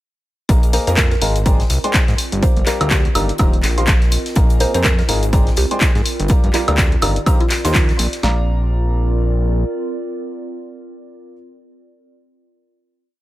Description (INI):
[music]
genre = piano house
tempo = 124 BPM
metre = 4/4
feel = swing 58% on 16ths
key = Bb mixolydian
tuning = A4 = 440 Hz
[part]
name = clear upright piano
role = riff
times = 0.5-11.3 s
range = Eb3 to C6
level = -24 LUFS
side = left 1 dB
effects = sidechain pumping, digital delay
[part]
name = fat analog bass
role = bass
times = 0.5-9.6 s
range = Eb1 to Ab2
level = -18 LUFS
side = equal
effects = sidechain pumping
[part]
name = big rock drum kit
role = drums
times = 0.5-8.2 s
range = hi-hat, snare drum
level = -33 LUFS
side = left 2 dB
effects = high-pass filter on hats, high-pass filter on snare, high-pass filter on room
[part]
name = house drum kit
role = drums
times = 0.5-8.4 s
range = kick drum, snare drum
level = -16 LUFS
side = equal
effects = none
[part]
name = punchy analog drum machine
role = drums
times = 0.5-8.2 s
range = handclaps, hi-hat, woodblock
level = -21 LUFS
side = equal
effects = none
[part]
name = warbly tape-like pad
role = texture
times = 1.2-11.6 s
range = C4 to Eb5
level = -28 LUFS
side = right 2 dB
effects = chorus, built-in reverb, sidechain pumping
[part]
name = mallet-like synth pluck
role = melody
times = 0.7-8.2 s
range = F4 to C5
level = -26 LUFS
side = right 2 dB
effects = chorus, phaser, digital delay
[sound]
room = studio reverb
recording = none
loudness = -14 LUFS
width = side -16 dB against mid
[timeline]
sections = 0.5-8.2 drop; 8.2-12.1 final chord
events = drop 0.5-8.2; band accent 7.7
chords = 0.5 Bb7sus4; 1.5 Abmaj9#11; 2.2 Gm7; 3.4 Eb69; 4.4 Bb7sus4; 5.3 Abmaj9#11; 6.1 Gm7; 7.3 Eb69; 8.2 Bb